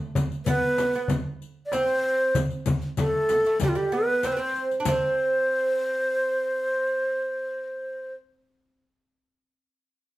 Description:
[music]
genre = Arabic maqam ensemble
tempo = 96 BPM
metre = 4/4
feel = straight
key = unclear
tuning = A4 = 440 Hz
[part]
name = darbuka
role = percussion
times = 0.0-5.2 s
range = none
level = -28 LUFS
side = equal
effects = none
[part]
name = frame drum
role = percussion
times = 0.2-5.2 s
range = none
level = -32 LUFS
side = left 3 dB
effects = none
[part]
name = riq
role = percussion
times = 0.2-5.1 s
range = none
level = -36 LUFS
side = left 4 dB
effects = none
[part]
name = breathy bright ney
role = melody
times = 0.5-8.1 s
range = F4 to D5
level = -24 LUFS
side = equal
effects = none
[part]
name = oud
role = second line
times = 0.5-8.8 s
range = G3 to D4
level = -30 LUFS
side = right 2 dB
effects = none
[sound]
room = wet studio reverb, RT60 0.6 s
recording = heard from further back in the room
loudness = -22 LUFS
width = side -16 dB against mid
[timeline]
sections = 0.0-4.9 A section; 4.9-7.4 B section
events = none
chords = none

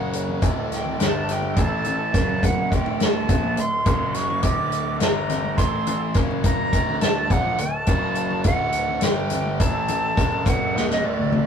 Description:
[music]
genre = psychedelic rock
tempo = 209 BPM (eighths)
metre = 7/8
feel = straight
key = D major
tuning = A4 = 440 Hz
[part]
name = bright silver concert flute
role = melody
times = 0.0-11.5 s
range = D5 to D6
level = -26 LUFS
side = right 2 dB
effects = none
[part]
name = bright tonewheel organ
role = sustained chords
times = 0.0-11.5 s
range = F#3 to A4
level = -36 LUFS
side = right 2 dB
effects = slow rotary speaker, overdrive, chorus vibrato
[part]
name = cranked stack guitar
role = riff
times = 0.0-11.5 s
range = D2 to Bb3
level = -27 LUFS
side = right 1 dB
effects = overdrive, phaser
[part]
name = bright grand piano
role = bass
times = 0.0-11.5 s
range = D1 to Bb1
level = -28 LUFS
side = left 1 dB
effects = none
[part]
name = soft-mallet drum kit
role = drums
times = 0.1-11.5 s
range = hi-hat, kick drum, snare drum, toms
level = -22 LUFS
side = equal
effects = none
[part]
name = congas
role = percussion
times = 0.3-11.5 s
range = none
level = -34 LUFS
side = left 5 dB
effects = none
[sound]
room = moderate booth ambience, RT60 0.2 s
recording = rough rehearsal-room recording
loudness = -19 LUFS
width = side -7 dB against mid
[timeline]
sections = 0.0-11.5 A section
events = drum fill 10.8-11.5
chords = 0.4 D; 1.0 G5; 1.6 A5; 2.1 F#5; 2.7 D; 3.9 F#5; 4.4 D; 5.0 G5; 5.6 A5; 6.2 F#5; 6.7 D; 7.9 F#5; 8.5 D; 9.0 G5; 9.6 A5; 10.2 D

